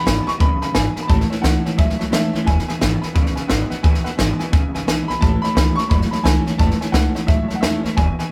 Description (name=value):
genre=rockabilly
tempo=174 BPM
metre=4/4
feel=swing 62% on 8ths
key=unclear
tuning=A4 = 441 Hz
part: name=warm upright piano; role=melody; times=0.0-8.3 s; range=E5 to C#6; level=-28 LUFS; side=equal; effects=none
part: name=picked steel-string acoustic guitar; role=accompaniment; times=0.0-8.3 s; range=E2 to E4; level=-31 LUFS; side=equal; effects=none
part: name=electric guitar through a small old amp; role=riff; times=0.0-8.3 s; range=E2 to F#3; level=-26 LUFS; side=equal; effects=tremolo
part: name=tack piano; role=accompaniment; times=0.1-8.3 s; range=B4 to B5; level=-35 LUFS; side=equal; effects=none
part: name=upright bass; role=bass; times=0.1-8.2 s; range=E1 to E2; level=-24 LUFS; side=equal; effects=none
part: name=compact cocktail drum kit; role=drums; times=0.1-8.2 s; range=hi-hat, kick drum, snare drum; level=-21 LUFS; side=equal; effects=none
room=light reverb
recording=band playing live in one room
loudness=-18 LUFS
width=mono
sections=0.0-8.3 A section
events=none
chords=0.0 E; 1.1 A; 2.5 E; 5.2 A